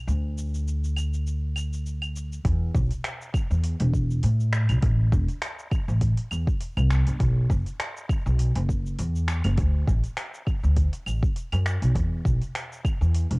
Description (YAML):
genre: organic downtempo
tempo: 101 BPM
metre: 4/4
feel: swing 55% on 16ths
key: unclear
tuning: A4 = 441 Hz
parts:
  - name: upright bass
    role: bass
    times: 0.0-13.4 s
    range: E1 to A2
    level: -23 LUFS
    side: equal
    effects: none
  - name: deep house drum kit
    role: drums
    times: 0.1-13.4 s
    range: cabasa, claves, finger snaps, hi-hat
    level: -34 LUFS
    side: equal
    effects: cassette tape
  - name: electronic kick drum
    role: drums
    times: 2.4-13.0 s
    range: none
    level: -25 LUFS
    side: equal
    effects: cassette tape
room: little or no reverb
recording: home recording on cassette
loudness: -22 LUFS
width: side -28 dB against mid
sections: 0.0-2.4 A section; 2.4-13.4 B section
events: none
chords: none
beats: | 0.07 0.67 1.26 1.85 | 2.45 3.04 3.64 4.23 | 4.83 5.42 6.01 6.61 | 7.20 7.79 8.39 8.98 | 9.58 10.17 10.77 11.36 | 11.95 12.55 13.14